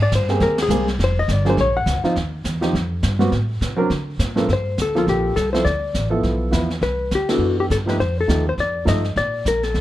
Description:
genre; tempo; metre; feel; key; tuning
jazz, small-group swing and bop; 206 BPM; 4/4; swing 59% on 8ths; G minor; A4 = 436 Hz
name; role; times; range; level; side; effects
hollow-body jazz guitar; melody; 0.0-2.0, 4.5-9.8 s; F4 to F#5; -21 LUFS; left 3 dB; none
upright bass; bass; 0.0-9.8 s; F1 to D3; -22 LUFS; equal; none
vintage brush drum kit; drums; 0.1-9.8 s; brushed snare drum, hi-hat, kick drum, ride cymbal, snare drum; -28 LUFS; right 1 dB; none
warm baby grand piano; accompaniment; 0.3-9.0 s; G2 to B4; -21 LUFS; right 2 dB; none
room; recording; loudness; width
light reverb; dark, warm production; -17 LUFS; side -14 dB against mid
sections
0.0-4.5 A section; 4.5-9.8 B section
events
band accent 0.5, 7.3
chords
0.0 Abmaj9; 1.0 Fmadd9; 1.6 Bbm; 2.1 Eb69; 3.3 Am; 3.9 D5; 4.5 Gm11; 5.6 Dmadd9; 6.2 Fmaj7#11/B; 6.8 Cmaj13; 8.0 F9; 9.2 Bb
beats
0.11 0.40 0.69 | 0.98 1.27 1.57 1.86 | 2.15 2.44 2.73 3.02 | 3.31 3.61 3.90 4.19 | 4.48 4.77 5.06 5.36 | 5.65 5.94 6.23 6.52 | 6.82 7.11 7.40 7.69 | 7.99 8.28 8.57 8.86 | 9.15 9.45 9.74

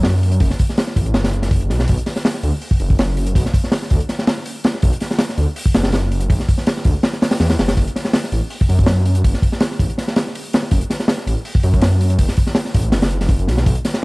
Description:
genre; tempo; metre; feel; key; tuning
drum and bass, jungle; 163 BPM; 4/4; straight; F# minor; A4 = 440 Hz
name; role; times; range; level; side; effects
detuned saw bass; bass; 0.0-13.7 s; F#1 to F#2; -17 LUFS; equal; none
crunchy breakbeat drum kit; drums; 0.0-14.0 s; hi-hat, kick drum, snare drum; -16 LUFS; equal; none
room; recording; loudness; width
little or no reverb; vinyl crackle; -15 LUFS; side -27 dB against mid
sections
0.0-14.0 A section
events
none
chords
none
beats
0.04 | 0.41 0.78 1.15 1.51 | 1.88 2.25 2.62 2.99 | 3.35 3.72 4.09 4.46 | 4.83 5.20 5.56 5.93 | 6.30 6.67 7.04 7.40 | 7.77 8.14 8.51 8.88 | 9.24 9.61 9.98 10.35 | 10.72 11.08 11.45 11.82 | 12.19 12.56 12.93 13.29 | 13.66

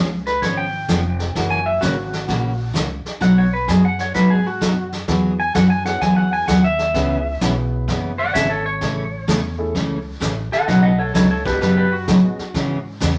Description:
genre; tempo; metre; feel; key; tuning
country, western swing; 129 BPM; 4/4; swing 66% on 8ths; unclear; A4 = 440 Hz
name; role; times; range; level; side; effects
picked steel-string acoustic guitar; accompaniment; 0.0-13.1 s; B2 to B4; -20 LUFS; equal; none
upright bass; bass; 0.0-13.2 s; E#1 to A2; -28 LUFS; equal; none
clean lap steel guitar; second line; 0.3-12.8 s; F#4 to G#5; -24 LUFS; equal; none
vintage brush drum kit; drums; 0.3-13.2 s; brushed snare drum, hi-hat, kick drum, snare drum; -28 LUFS; equal; none
warm upright piano; accompaniment; 5.1-12.4 s; A3 to C#5; -31 LUFS; equal; none
room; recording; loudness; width
wet studio reverb, RT60 0.7 s; nothing above 10.3 kHz; -19 LUFS; mono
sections
0.0-13.2 A section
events
electric slide guitar solo 0.0-13.2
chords
0.0 C#7; 1.4 F#7; 3.2 B; 5.1 Eadd9; 6.9 C#m7; 8.8 Amaj7; 10.7 Badd9; 12.5 C#m7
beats
0.42 0.89 | 1.35 1.82 2.28 2.75 | 3.22 3.68 4.15 4.61 | 5.08 5.55 6.01 6.48 | 6.95 7.41 7.88 8.35 | 8.81 9.28 9.74 10.21 | 10.68 11.14 11.61 12.08 | 12.54 13.01

